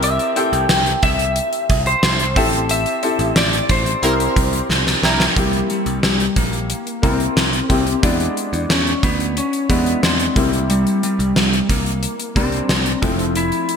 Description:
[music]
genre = 1980s-style pop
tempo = 90 BPM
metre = 4/4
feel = straight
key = C mixolydian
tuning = A4 = 440 Hz
[part]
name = lightly driven lead guitar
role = melody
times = 0.0-13.8 s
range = G3 to G5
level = -20 LUFS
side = left 1 dB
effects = lush chorus
[part]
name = warm baby grand piano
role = accompaniment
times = 0.0-13.8 s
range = F3 to Bb4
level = -22 LUFS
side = left 2 dB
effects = none
[part]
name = modern bright picked electric bass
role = bass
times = 0.0-13.5 s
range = F1 to E2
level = -23 LUFS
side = right 1 dB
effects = none
[part]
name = gated 80s drum kit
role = drums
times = 0.0-13.8 s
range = hi-hat, kick drum, snare drum, tambourine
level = -19 LUFS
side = equal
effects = gated reverb
[part]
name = warm horn section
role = stabs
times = 4.0-5.2 s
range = G3 to Bb4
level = -25 LUFS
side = right 4 dB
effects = ping-pong delay
[sound]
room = moderate lush hall reverb, RT60 2.7 s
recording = bright 1980s-style digital production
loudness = -15 LUFS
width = side -6 dB against mid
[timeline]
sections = 0.0-5.4 A section; 5.4-13.8 B section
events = band accent 2.7-5.4; drum fill 4.7-5.4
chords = 0.0 C7; 2.4 Am7; 4.0 C7; 8.0 E7; 10.4 C7; 13.0 Fmaj7

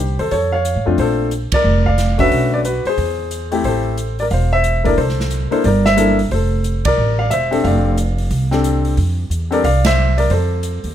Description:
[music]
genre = jazz piano trio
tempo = 180 BPM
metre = 4/4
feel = swing 63% on 8ths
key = F major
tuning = A4 = 442 Hz
[part]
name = warm baby grand piano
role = melody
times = 0.0-10.9 s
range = A3 to F5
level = -17 LUFS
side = left 2 dB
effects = plate reverb
[part]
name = upright bass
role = bass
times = 0.0-10.9 s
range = E1 to Ab2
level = -17 LUFS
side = right 1 dB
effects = none
[part]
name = swinging big-band drum kit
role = drums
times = 0.2-10.9 s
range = hi-hat, kick drum, ride cymbal, snare drum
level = -25 LUFS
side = right 2 dB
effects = none
[sound]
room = light reverb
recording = none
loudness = -14 LUFS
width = side -10 dB against mid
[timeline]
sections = 0.0-9.0 A section; 9.0-10.9 B section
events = band accent 1.5, 6.8, 9.8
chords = 0.3 F; 1.0 Bbmaj9; 2.3 Bm7; 3.0 E; 3.6 Am7; 5.0 C13; 6.3 F6; 9.0 F5; 10.3 F7

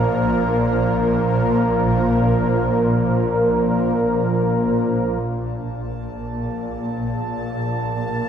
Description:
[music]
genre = dark ambient drone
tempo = free time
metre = none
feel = none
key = unclear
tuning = A4 = 441 Hz
[part]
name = sweeping resonant pad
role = sustained chords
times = 0.0-8.3 s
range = F3 to Bb4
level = -20 LUFS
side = equal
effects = chorus
[part]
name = swarming drone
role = drone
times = 0.0-8.3 s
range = Bb1 to Bb2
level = -22 LUFS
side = equal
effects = built-in reverb
[part]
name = bubbling stepped-filter texture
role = texture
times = 0.0-8.3 s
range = Bb3 to A5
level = -32 LUFS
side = equal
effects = chorus, built-in reverb
[sound]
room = wet spring reverb, RT60 2.5 s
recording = none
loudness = -18 LUFS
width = side -8 dB against mid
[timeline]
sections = 0.0-5.2 A section; 5.2-8.3 B section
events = fade-out on synth texture 0.0-5.2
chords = 0.0 Bb5

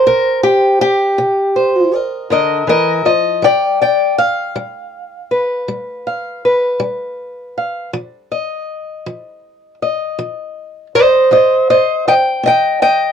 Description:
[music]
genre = acoustic country blues, solo or duo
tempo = 53 BPM (dotted quarters)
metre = 12/8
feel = straight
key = unclear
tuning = A4 = 440 Hz
[part]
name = fingerpicked old ladder-braced acoustic guitar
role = solo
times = 0.0-13.1 s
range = C3 to G5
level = -12 LUFS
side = left 1 dB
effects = none
[sound]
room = light reverb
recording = none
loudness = -12 LUFS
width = side -8 dB against mid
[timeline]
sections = 0.0-13.1 A section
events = none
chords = 0.0 C7(no3); 3.4 G7; 7.9 F5; 12.4 C5

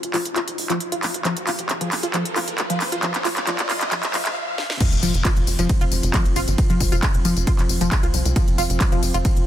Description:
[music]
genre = driving peak-time techno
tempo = 135 BPM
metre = 4/4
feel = straight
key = unclear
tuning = A4 = 440 Hz
[part]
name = tight sequencer bass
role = bass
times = 0.0-9.5 s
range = F1 to C2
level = -24 LUFS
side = equal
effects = sidechain pumping, high-pass filter
[part]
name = techno drum kit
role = drums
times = 0.0-9.4 s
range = crash cymbal, handclaps, hi-hat, ride cymbal, snare drum, tambourine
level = -24 LUFS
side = equal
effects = overdrive, small room reverb
[part]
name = riser and impact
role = sound effects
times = 0.0-6.6 s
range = none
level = -30 LUFS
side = equal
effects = none
[part]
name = tight sequenced synth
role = riff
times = 0.1-9.2 s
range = F3 to F4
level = -26 LUFS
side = left 1 dB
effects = chorus, phaser, overdrive, cassette tape, sidechain pumping, ping-pong delay
[part]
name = analog drone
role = drone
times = 5.2-9.5 s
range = F3 to C4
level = -30 LUFS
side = equal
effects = chorus, sidechain pumping
[part]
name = electronic kick drum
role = drums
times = 4.8-9.3 s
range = none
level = -19 LUFS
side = equal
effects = overdrive, small room reverb
[sound]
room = light reverb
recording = dense, heavily limited modern master, high-pass filter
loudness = -18 LUFS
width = side -11 dB against mid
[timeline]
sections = 0.0-4.8 A section; 4.8-9.5 B section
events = build-up 0.0-4.8; drum fill 0.0-4.4, 4.6; riser 0.0-4.4; filter sweep on synth arpeggio sound 0.0-4.8; stop 4.4-4.8; drop 4.8-9.5; impact 4.8-6.6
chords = 0.0 N.C.; 4.8 F5

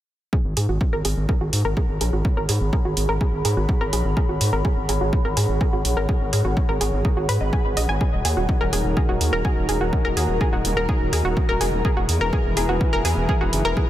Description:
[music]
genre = melodic techno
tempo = 125 BPM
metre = 4/4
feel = straight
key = G# minor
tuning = A4 = 439 Hz
[part]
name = analog pluck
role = arpeggios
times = 0.3-13.8 s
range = F#4 to G#5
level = -26 LUFS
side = equal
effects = chorus, sidechain pumping, analog delay
[part]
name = electronic kick drum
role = drums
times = 0.3-13.9 s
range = none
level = -22 LUFS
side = equal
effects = none
[part]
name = warbly tape-like pad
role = texture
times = 0.3-13.9 s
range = G#4 to B5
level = -30 LUFS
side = right 1 dB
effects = chorus, built-in reverb, sidechain pumping
[part]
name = gritty driven synth bass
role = bass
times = 0.4-13.7 s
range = D#1 to G#2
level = -23 LUFS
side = equal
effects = tube saturation, sidechain pumping
[part]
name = electronic hi-hat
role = drums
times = 0.6-13.6 s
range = none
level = -27 LUFS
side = right 2 dB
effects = overdrive, sidechain pumping on hats
[part]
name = warm analog pad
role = sustained chords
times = 8.0-13.9 s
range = D#3 to B4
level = -27 LUFS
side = left 1 dB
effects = chorus, sidechain pumping
[sound]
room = moderate cathedral reverb, RT60 6.4 s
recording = dreamy mix soaked in reverb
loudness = -19 LUFS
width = side -13 dB against mid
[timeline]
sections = 0.3-13.9 A section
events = filter sweep on synth arpeggio sound 0.3-13.9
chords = 0.3 G#m; 8.0 D#m; 11.8 E

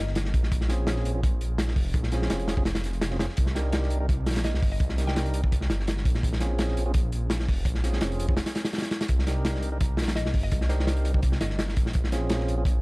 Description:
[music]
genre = drum and bass, jungle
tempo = 168 BPM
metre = 4/4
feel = straight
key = C phrygian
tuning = A4 = 440 Hz
[part]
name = mallet-like synth pluck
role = melody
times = 0.0-0.3, 4.4-5.4, 10.2-11.8 s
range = C5 to G5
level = -39 LUFS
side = left 2 dB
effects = wide subtle chorus, dub echo
[part]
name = detuned saw bass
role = bass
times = 0.0-12.8 s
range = F1 to C2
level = -27 LUFS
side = equal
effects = none
[part]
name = crunchy breakbeat drum kit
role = drums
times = 0.1-12.8 s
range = hi-hat, kick drum, snare drum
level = -26 LUFS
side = equal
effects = none
[part]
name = tonewheel organ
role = stabs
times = 0.7-12.6 s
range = C4 to Bb4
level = -35 LUFS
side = right 2 dB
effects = slow rotary speaker, dub echo
[sound]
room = studio ambience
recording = dry, gritty hardware recording, transformer saturation, vinyl crackle, faint mains hum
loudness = -23 LUFS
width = side -24 dB against mid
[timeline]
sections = 0.0-12.8 A section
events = break 8.4-9.1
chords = 0.0 Cm7 (rootless); 0.5 Bbm9; 3.4 Cm9; 6.2 Bbm9; 9.1 Cm9; 11.9 Bbm9

